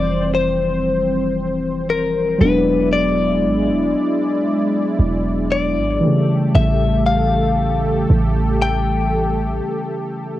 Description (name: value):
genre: R&B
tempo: 58 BPM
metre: 4/4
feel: straight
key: unclear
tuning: A4 = 440 Hz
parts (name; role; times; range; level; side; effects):
- direct-recorded clean electric guitar; melody; 0.0-10.4 s; Bb4 to G5; -21 LUFS; left 5 dB; cassette tape, analog delay
- muted felt-like synth keys; accompaniment; 0.0-10.4 s; C#3 to D4; -19 LUFS; equal; chorus, cassette tape
- warm analog pad; sustained chords; 0.0-10.4 s; G#3 to D5; -24 LUFS; right 1 dB; chorus, cassette tape
- warm 808-style bass; bass; 0.0-9.6 s; E1 to A1; -21 LUFS; right 1 dB; none
room: light reverb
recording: home recording on cassette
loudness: -15 LUFS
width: side -14 dB against mid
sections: 0.0-10.4 A section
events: none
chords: 0.0 F5; 2.4 E7; 6.0 A7